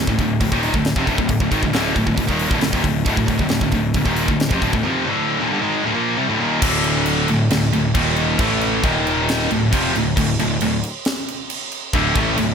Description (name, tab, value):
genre	heavy metal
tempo	135 BPM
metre	4/4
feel	straight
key	D phrygian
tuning	A4 = 440 Hz
part	scooped high-gain guitar	riff	0.0-12.5 s	D2 to Bb3	-20 LUFS	left 11 dB	distortion
part	scooped high-gain guitar	riff	0.0-12.5 s	D2 to Bb3	-21 LUFS	right 10 dB	distortion
part	fuzz picked electric bass	bass	0.0-12.5 s	D1 to A1	-24 LUFS	equal	overdrive
part	tight metal drum kit	drums	0.1-12.5 s	crash cymbal, hi-hat, kick drum, snare drum	-22 LUFS	equal	none
room	light reverb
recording	none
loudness	-16 LUFS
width	side -6 dB against mid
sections	0.0-6.6 A section; 6.6-12.5 B section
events	half time 6.6-12.5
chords	0.0 Dm; 6.6 D5; 8.0 Eb5; 8.4 A5; 8.8 Eb5; 9.5 Dm